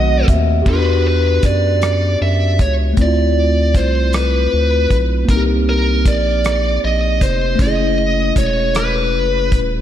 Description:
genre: slow six-eight R&B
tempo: 52 BPM (dotted quarters)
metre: 6/8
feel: straight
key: unclear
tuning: A4 = 440 Hz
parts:
  - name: high-gain lead guitar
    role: melody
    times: 0.0-9.6 s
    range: Bb4 to E5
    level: -18 LUFS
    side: right 1 dB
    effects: distortion
  - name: mellow tine electric piano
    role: accompaniment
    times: 0.0-9.8 s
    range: D#3 to F#5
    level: -20 LUFS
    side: left 2 dB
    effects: slow stereo tremolo
  - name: mellow woodwind section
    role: sustained chords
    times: 0.0-0.6 s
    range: B2 to C4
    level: -33 LUFS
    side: equal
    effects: none
  - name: round analog bass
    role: bass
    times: 0.0-9.8 s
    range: D#1 to F#2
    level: -17 LUFS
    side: equal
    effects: none
  - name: warm soul drum kit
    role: drums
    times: 0.3-9.7 s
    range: crash cymbal, hi-hat, kick drum, rim click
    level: -18 LUFS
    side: equal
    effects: none
room: moderate lush hall reverb, RT60 2.1 s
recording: dreamy mix soaked in reverb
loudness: -13 LUFS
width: side -10 dB against mid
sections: 0.7-9.8 A section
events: tine electric piano fill 0.0-0.7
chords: 0.0 B7b9; 0.7 Em9; 3.0 Dm9; 5.3 Cm9; 7.6 F#m9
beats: | 0.67 1.82 | 2.98 4.13 | 5.28 6.44 | 7.59 8.74

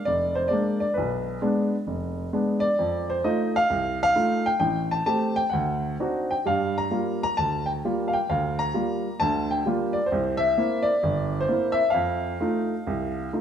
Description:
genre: solo jazz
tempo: 131 BPM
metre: 4/4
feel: swing 67% on 8ths, rubato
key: F mixolydian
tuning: A4 = 440 Hz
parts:
  - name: warm upright piano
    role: solo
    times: 0.0-13.4 s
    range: F1 to Bb5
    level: -22 LUFS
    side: equal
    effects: none
room: wet stone room reverb, RT60 1.4 s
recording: band playing live in one room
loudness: -22 LUFS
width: side -8 dB against mid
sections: 0.0-13.4 A section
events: none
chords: 0.0 Bb7; 1.0 Bdim7; 2.8 F7; 4.6 Am7; 5.5 D7b9; 6.5 Gm7; 10.1 C7; 11.9 F7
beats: 0.06 0.52 | 0.98 1.43 1.89 2.34 | 2.79 3.25 3.70 4.16 | 4.61 5.07 5.53 6.00 | 6.47 6.93 7.39 7.85 | 8.30 8.76 9.21 9.66 | 10.12 10.57 11.02 11.48 | 11.94 12.40 12.87 13.34

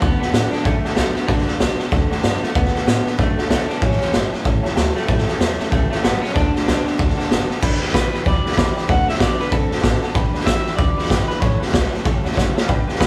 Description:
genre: rockabilly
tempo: 190 BPM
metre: 4/4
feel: swing 61% on 8ths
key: D major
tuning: A4 = 440 Hz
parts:
  - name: electric guitar through a small old amp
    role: melody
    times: 0.0-13.1 s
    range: A3 to F#5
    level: -27 LUFS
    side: equal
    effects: slapback echo
  - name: honky-tonk upright piano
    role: accompaniment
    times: 0.0-13.1 s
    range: B4 to B5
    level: -34 LUFS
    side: equal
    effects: none
  - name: picked steel-string acoustic guitar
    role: accompaniment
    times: 0.0-13.1 s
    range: A2 to B4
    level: -35 LUFS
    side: equal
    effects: none
  - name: clean electric guitar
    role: riff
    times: 0.0-13.1 s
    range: G2 to C4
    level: -30 LUFS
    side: equal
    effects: spring reverb
  - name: upright bass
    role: bass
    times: 0.0-13.1 s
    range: F#1 to A2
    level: -28 LUFS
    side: equal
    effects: none
  - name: raw garage drum kit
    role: drums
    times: 0.0-13.1 s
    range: crash cymbal, hi-hat, kick drum, snare drum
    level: -21 LUFS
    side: equal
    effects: none
room: moderate large studio reverb, RT60 1.1 s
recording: band playing live in one room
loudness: -19 LUFS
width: mono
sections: 0.0-7.6 A section; 7.6-13.1 B section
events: drum fill 12.4-12.7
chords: 0.0 D; 3.8 A7; 6.4 D; 7.6 G; 8.9 D; 10.2 G; 11.4 A7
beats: | 0.02 0.33 0.65 0.97 | 1.28 1.60 1.92 2.23 | 2.55 2.87 3.19 3.50 | 3.82 4.14 4.45 4.77 | 5.09 5.40 5.72 6.04 | 6.35 6.67 6.99 7.30 | 7.62 7.94 8.25 8.57 | 8.89 9.20 9.52 9.84 | 10.15 10.47 10.79 11.10 | 11.42 11.73 12.05 12.37 | 12.69 13.00

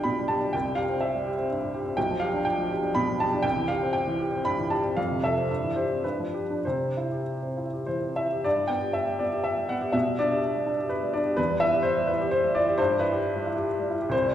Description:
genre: classical, romantic character piece for solo piano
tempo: 93-137 BPM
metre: 3/4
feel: rubato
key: C major, G major from 8.5 s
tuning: A4 = 443 Hz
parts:
  - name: clear upright piano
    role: solo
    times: 0.0-14.3 s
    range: B1 to B5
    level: -24 LUFS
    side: equal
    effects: none
room: wet recital hall reverb, RT60 1.6 s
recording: heard from further back in the room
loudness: -24 LUFS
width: side -11 dB against mid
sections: 0.0-8.5 A section; 8.5-14.3 B section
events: none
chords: 0.0 G/B; 0.5 C; 2.0 G7/B; 3.4 C; 5.0 F; 5.5 C/G; 6.0 G7; 6.6 C; 8.5 G; 9.9 G/B; 11.4 Em; 12.8 Em/G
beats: 0.07 | 0.54 1.02 1.49 | 1.96 2.44 2.94 | 3.44 3.94 4.45 | 4.97 5.49 6.03 | 6.64 7.27 7.88 | 8.45 8.95 9.45 | 9.94 10.43 10.90 | 11.38 11.85 12.33 | 12.79 13.24 13.68 | 14.12

